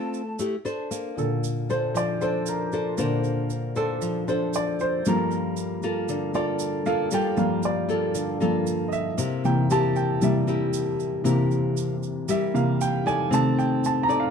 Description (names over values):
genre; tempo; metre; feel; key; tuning
bossa nova; 116 BPM; 4/4; straight; Bb major; A4 = 440 Hz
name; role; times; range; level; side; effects
nylon-string guitar; accompaniment; 0.0-14.3 s; C3 to D5; -26 LUFS; left 3 dB; none
tube shaker; percussion; 0.1-14.3 s; none; -39 LUFS; right 10 dB; none
warm baby grand piano; accompaniment; 1.2-14.3 s; G2 to Bb5; -24 LUFS; right 1 dB; none
room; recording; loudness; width
moderate studio reverb, RT60 0.8 s; dark, warm production; -22 LUFS; side -6 dB against mid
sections
0.9-14.3 A section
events
grand piano solo 0.9-14.3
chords
0.4 Amadd11; 0.9 Bbmaj9; 5.1 Gm9; 9.2 C7; 13.3 Cm13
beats
0.40 | 0.91 1.43 1.95 2.47 | 2.98 3.50 4.02 4.54 | 5.05 5.57 6.09 6.61 | 7.12 7.64 8.15 8.67 | 9.19 9.71 10.22 10.74 | 11.25 11.77 12.29 12.80 | 13.32 13.83